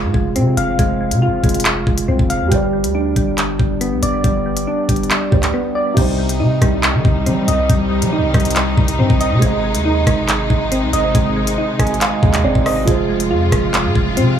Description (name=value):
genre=hip hop, drill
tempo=139 BPM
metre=4/4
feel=half-time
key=C harmonic minor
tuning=A4 = 440 Hz
part: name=dark baby grand piano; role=accompaniment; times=0.0-14.4 s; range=C3 to Ab5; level=-24 LUFS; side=right 6 dB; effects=low-pass filter
part: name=soft electric-piano-like synth keys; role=arpeggios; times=0.0-14.4 s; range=G3 to F5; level=-18 LUFS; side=equal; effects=chorus, low-pass filter, tape echo
part: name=long sustained 808-style bass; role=bass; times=0.0-14.4 s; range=F1 to G3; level=-20 LUFS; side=equal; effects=none
part: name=drill drum kit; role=drums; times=0.1-14.3 s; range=crash cymbal, handclaps, hi-hat, kick drum, rim click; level=-17 LUFS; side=equal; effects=none
part: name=rich studio string section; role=sustained chords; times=6.0-14.4 s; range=C3 to F4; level=-22 LUFS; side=equal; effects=none
room=light reverb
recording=small room reverb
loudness=-14 LUFS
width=side -9 dB against mid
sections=0.0-6.0 A section; 6.0-14.4 B section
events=break 5.5-6.0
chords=0.0 Fm; 2.5 G; 6.0 Cm; 9.4 Ab; 12.9 Fm